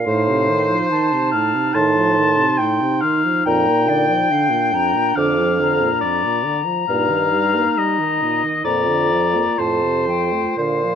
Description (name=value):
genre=classical, slow romantic movement for wind quintet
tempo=58-72 BPM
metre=4/4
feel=rubato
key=Bb major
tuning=A4 = 440 Hz
part: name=silver concert flute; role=melody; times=0.0-10.9 s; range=D5 to D6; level=-22 LUFS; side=left 5 dB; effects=none
part: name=dark bassoon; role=bass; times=0.0-10.9 s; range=F2 to Bb2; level=-20 LUFS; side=right 2 dB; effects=none
part: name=clear oboe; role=second line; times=0.1-10.9 s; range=C5 to A5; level=-20 LUFS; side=left 3 dB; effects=none
part: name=dark French horn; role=accompaniment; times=0.1-10.9 s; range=F2 to Bb3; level=-26 LUFS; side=right 1 dB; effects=none
part: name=dark clarinet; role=accompaniment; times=0.1-10.9 s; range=D4 to F4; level=-24 LUFS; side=right 6 dB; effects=none
room=light reverb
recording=close, detailed microphones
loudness=-15 LUFS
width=side -8 dB against mid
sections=0.0-10.9 A section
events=none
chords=0.1 F7/A; 3.5 Bb/F; 6.9 Eb/G; 8.7 Bb/F; 9.6 F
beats=| 0.06 0.91 1.74 2.59 | 3.46 4.31 5.17 6.03 | 6.89 7.77 8.65 9.59 | 10.58